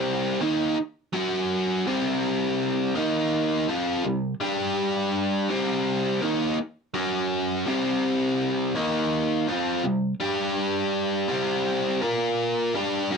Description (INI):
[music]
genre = rock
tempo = 83 BPM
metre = 4/4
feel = straight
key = C minor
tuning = A4 = 441 Hz
[part]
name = biting overdriven guitar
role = solo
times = 0.0-13.2 s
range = C3 to Bb4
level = -23 LUFS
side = equal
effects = none
[sound]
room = light reverb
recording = dry, close 1970s-style studio recording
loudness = -23 LUFS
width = side -5 dB against mid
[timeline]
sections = 0.0-13.2 A section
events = none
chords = 0.0 Cm; 1.1 F#5; 1.9 C5; 3.0 Eb5; 3.7 C5; 4.4 G5; 5.5 Cm; 6.9 F#5; 7.7 C5; 8.8 Eb5; 9.5 C5; 10.2 G5; 11.3 C5; 12.0 Bb5